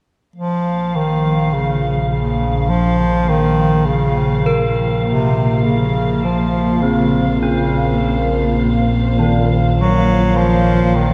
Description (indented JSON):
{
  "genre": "dark ambient drone",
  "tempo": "51 BPM",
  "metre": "4/4",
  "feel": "straight",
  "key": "Bb minor",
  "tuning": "A4 = 439 Hz",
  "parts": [
    { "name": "dark studio cello section", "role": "sustained chords", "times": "0.3-11.1 s", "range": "Bb3 to C5", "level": "-32 LUFS", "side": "equal", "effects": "shimmer reverb" },
    { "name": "icy glass pad", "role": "texture", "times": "0.5-11.1 s", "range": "F5", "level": "-29 LUFS", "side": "equal", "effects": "chorus, built-in reverb, shimmer reverb" },
    { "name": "clear bass clarinet", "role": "melody", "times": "0.4-11.1 s", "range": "C3 to Gb3", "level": "-19 LUFS", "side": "equal", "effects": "shimmer reverb, diffuse ambient delay" },
    { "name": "analog drone", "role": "drone", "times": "1.0-11.1 s", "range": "Bb1 to Bb2", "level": "-20 LUFS", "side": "equal", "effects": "chorus" },
    { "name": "gamelan-type bronze metallophone", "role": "arpeggios", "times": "4.5-11.1 s", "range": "Eb3 to Bb4", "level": "-25 LUFS", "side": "equal", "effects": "shimmer reverb, diffuse ambient delay" }
  ],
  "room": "wet cathedral reverb, RT60 5.8 s",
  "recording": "in a vast, echoing space",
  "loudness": "-16 LUFS",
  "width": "mono",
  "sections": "0.4-11.1 A section",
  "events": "fade-in on cello section 0.4-11.1",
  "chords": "0.4 Bbmadd9",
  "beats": "| 0.36 1.53 2.71 3.89 | 5.06 6.24 7.42 8.59 | 9.77 10.95"
}